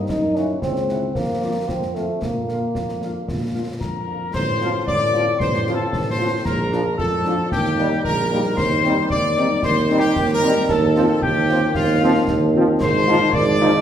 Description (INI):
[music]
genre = military-style march for wind band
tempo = 113 BPM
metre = 2/4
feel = straight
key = unclear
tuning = A4 = 441 Hz
[part]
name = clear euphonium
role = second line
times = 0.1-3.8 s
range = A3 to Eb4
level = -23 LUFS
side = right 1 dB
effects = none
[part]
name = mellow tuba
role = bass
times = 0.1-13.8 s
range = Ab1 to Bb2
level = -21 LUFS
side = right 2 dB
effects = none
[part]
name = concert snare drum, clash cymbals and concert bass drum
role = drums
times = 0.1-13.7 s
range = none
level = -27 LUFS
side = left 1 dB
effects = none
[part]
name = clear trumpet section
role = melody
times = 0.4-13.8 s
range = F4 to Gb5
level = -24 LUFS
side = equal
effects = none
[part]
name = mellow French horn section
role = accompaniment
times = 0.4-13.7 s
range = F3 to F4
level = -27 LUFS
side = left 3 dB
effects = none
[part]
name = mellow wooden piccolo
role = second line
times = 3.8-13.8 s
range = F5 to D6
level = -24 LUFS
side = left 3 dB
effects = none
[part]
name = mellow trombone section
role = sustained chords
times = 4.6-13.7 s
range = F3 to F4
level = -25 LUFS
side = right 2 dB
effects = none
[sound]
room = wet recital hall reverb, RT60 1.3 s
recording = recorded in a church or concert hall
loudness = -17 LUFS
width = side -9 dB against mid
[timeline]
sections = 0.0-4.3 A section; 4.3-13.8 B section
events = none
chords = 0.1 Gb7; 1.2 Bb/F; 1.7 F; 2.2 Bb; 4.3 F/A; 6.5 Bb; 7.5 Eb; 8.6 Cm/Eb; 10.7 F7/Eb; 12.8 Fm7/Ab